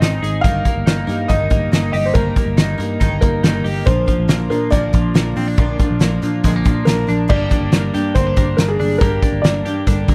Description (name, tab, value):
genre	jangly indie pop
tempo	140 BPM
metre	4/4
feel	straight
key	unclear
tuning	A4 = 440 Hz
part	warm upright piano	melody	0.0-9.8 s	Ab4 to F5	-25 LUFS	equal	slapback echo
part	picked steel-string acoustic guitar	accompaniment	0.0-10.1 s	G2 to Eb4	-25 LUFS	equal	none
part	twelve-string electric guitar	arpeggios	0.0-10.1 s	F3 to Ab4	-27 LUFS	equal	subtle chorus
part	picked electric bass	bass	0.0-10.1 s	G1 to Bb2	-23 LUFS	equal	none
part	loose indie drum kit	drums	0.0-10.1 s	crash cymbal, hi-hat, kick drum, snare drum	-19 LUFS	equal	none
room	little or no reverb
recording	none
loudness	-16 LUFS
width	mono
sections	0.0-7.3 A section; 7.3-10.1 B section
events	none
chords	0.4 Eb/G; 3.9 Bb; 7.3 Gm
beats	0.01 | 0.44 0.86 1.29 1.72 | 2.15 2.58 3.00 3.43 | 3.86 4.29 4.72 5.15 | 5.58 6.01 6.43 6.87 | 7.29 7.72 8.15 8.58 | 9.01 9.44 9.87